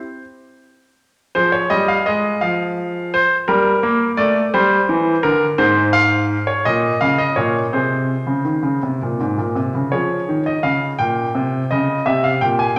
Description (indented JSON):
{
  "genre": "classical-period piano sonatina",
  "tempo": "56 BPM (dotted quarters)",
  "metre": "6/8",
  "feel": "rubato",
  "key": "F minor",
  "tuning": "A4 = 440 Hz",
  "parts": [
    { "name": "clear baby grand piano", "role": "solo", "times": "0.0-12.8 s", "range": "Ab2 to Ab5", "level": "-18 LUFS", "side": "equal", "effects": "none" }
  ],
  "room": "wet recital hall reverb, RT60 1.6 s",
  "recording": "none",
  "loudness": "-18 LUFS",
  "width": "mono",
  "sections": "0.0-1.3 A section; 1.3-12.8 B section",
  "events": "none",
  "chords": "0.0 N.C.; 1.3 Fm; 3.5 Edim/G (rootless); 5.6 N.C.; 6.6 Bbmadd11; 7.7 Abadd11/C; 8.8 Abadd9; 9.9 Db; 11.0 Gdim/Bb; 12.1 C5"
}